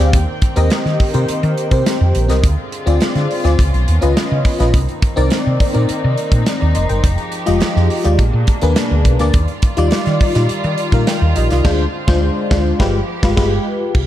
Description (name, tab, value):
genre	polished 1980s jazz-funk pop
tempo	104 BPM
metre	4/4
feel	straight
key	unclear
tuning	A4 = 437 Hz
part	FM electric piano	accompaniment	0.0-14.0 s	G3 to C6	-19 LUFS	left 2 dB	ensemble chorus
part	warm studio string section	sustained chords	0.0-13.9 s	Cb3 to G5	-25 LUFS	right 1 dB	none
part	woody fretless electric bass	bass	0.0-14.1 s	F1 to Eb3	-15 LUFS	equal	analog chorus
part	modern studio drum kit	drums	0.1-14.1 s	crash cymbal, hi-hat, kick drum, snare drum	-18 LUFS	equal	none
room	light reverb, small room ambience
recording	dark, warm production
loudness	-13 LUFS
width	side -12 dB against mid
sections	0.0-13.9 A section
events	band accent 11.6-13.9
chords	0.1 Eb6; 2.4 Dm7b5; 3.6 Db9; 4.7 Cm9; 7.0 Fm9; 8.2 Bb7b9; 9.3 Ebmaj9; 11.6 Dm7b5; 12.8 G7b9